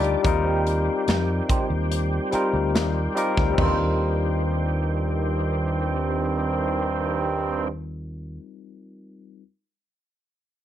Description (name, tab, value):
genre	lush 1970s-style soul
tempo	72 BPM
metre	4/4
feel	straight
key	Eb major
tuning	A4 = 440 Hz
part	barky tine electric piano	accompaniment	0.0-9.4 s	G3 to Bb4	-27 LUFS	left 4 dB	overdrive, auto-pan
part	overdriven tonewheel organ	sustained chords	0.0-7.7 s	Eb3 to D5	-31 LUFS	right 1 dB	chorus vibrato, slow rotary speaker
part	electric guitar through a small old amp	riff	0.0-8.4 s	Eb4 to D5	-32 LUFS	right 7 dB	wah, harmonic tremolo
part	fingered electric bass	bass	0.0-8.4 s	D2 to F2	-26 LUFS	equal	none
part	modern studio drum kit	drums	0.0-3.8 s	hi-hat, kick drum, snare drum, splash cymbal, toms	-25 LUFS	equal	none
part	clear trombone section	stabs	3.6-7.7 s	G2 to C4	-27 LUFS	right 4 dB	none
room	light reverb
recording	none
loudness	-21 LUFS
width	side -11 dB against mid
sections	0.0-3.6 A section; 3.6-6.9 B section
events	none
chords	0.2 Eb6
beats	| 0.25 1.08 1.91 2.75 | 3.58 4.42 5.25 6.08